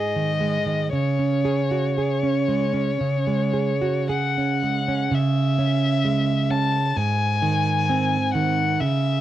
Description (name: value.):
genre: romantic duo for violin and classical guitar.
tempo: 53-67 BPM.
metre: 4/4.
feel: rubato.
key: C# minor.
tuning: A4 = 440 Hz.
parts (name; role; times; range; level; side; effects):
dark violin; melody; 0.0-9.2 s; C#5 to A5; -24 LUFS; left 6 dB; cassette tape.
nylon-string guitar; accompaniment; 0.0-9.2 s; G#2 to G#4; -21 LUFS; right 3 dB; cassette tape.
room: moderate studio reverb, RT60 0.6 s.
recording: home recording on cassette.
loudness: -20 LUFS.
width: side -12 dB against mid.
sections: 0.0-5.1 A section; 5.1-9.2 B section.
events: none.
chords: 0.0 G#5; 0.9 C#5; 5.1 C#m; 7.0 G#.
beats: | 0.94 1.98 3.01 4.11 | 5.14 6.06 6.97 7.89 | 8.80.